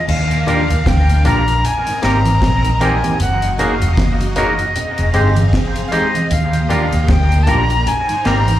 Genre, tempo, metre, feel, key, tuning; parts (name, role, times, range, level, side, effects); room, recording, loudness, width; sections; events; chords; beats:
lovers rock reggae; 77 BPM; 4/4; swing 58% on 16ths; Eb major; A4 = 441 Hz
mellow tenor recorder; melody; 0.0-8.6 s; Eb5 to Bb5; -20 LUFS; left 1 dB; tape echo, plate reverb, slapback echo
string machine, violins; second line; 0.0-8.6 s; Bb3 to G5; -25 LUFS; equal; ensemble chorus, plate reverb, slapback echo
vintage muted fingered electric bass; bass; 0.1-8.6 s; F1 to Eb2; -15 LUFS; equal
deep reggae drum kit; drums; 0.1-8.6 s; crash cymbal, hi-hat, kick drum, snare drum; -20 LUFS; equal
congas; percussion; 0.1-8.6 s; -25 LUFS; right 3 dB; tape echo
mellow tonewheel organ; accompaniment; 0.3-8.5 s; Eb2 to G4; -28 LUFS; equal
barky tine electric piano; accompaniment; 0.5-8.4 s; Ab3 to Ab4; -22 LUFS; left 4 dB; plate reverb, slapback echo
twangy electric guitar; stabs; 0.5-8.4 s; G3 to C5; -23 LUFS; right 2 dB; tape echo, plate reverb, slapback echo
light reverb; live gig heard through the venue's PA, club reverb, lossy compression artefacts; -13 LUFS; side -13 dB against mid
0.1-8.6 A section
0.1 Ebmaj9; 1.6 Abmaj9; 3.2 Gb6; 4.8 Fm9; 6.3 Ebmaj9; 7.9 Abmaj9
| 0.08 0.86 1.64 2.42 | 3.20 3.98 4.75 5.53 | 6.31 7.09 7.87